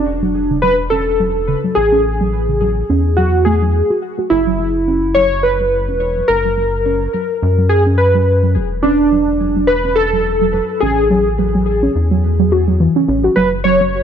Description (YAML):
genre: IDM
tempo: 106 BPM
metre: 4/4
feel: swing 56% on 16ths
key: unclear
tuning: A4 = 440 Hz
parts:
  - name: warbly lo-fi synth keys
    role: melody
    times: 0.0-14.0 s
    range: D4 to C#5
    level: -15 LUFS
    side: equal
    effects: chorus, ping-pong delay
  - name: rubbery square bass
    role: bass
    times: 0.0-14.0 s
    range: E1 to F#2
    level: -18 LUFS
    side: left 1 dB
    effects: none
  - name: warbly dusty pluck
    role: arpeggios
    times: 0.2-13.9 s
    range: C#3 to F#4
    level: -19 LUFS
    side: right 2 dB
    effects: chorus, ping-pong delay
room: light reverb, digital ambience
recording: none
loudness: -12 LUFS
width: side -8 dB against mid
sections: 0.0-14.0 A section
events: filter sweep on synth pluck 0.0-14.0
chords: 0.0 Esus4; 4.3 F#7sus4; 8.6 Esus4; 13.4 F#5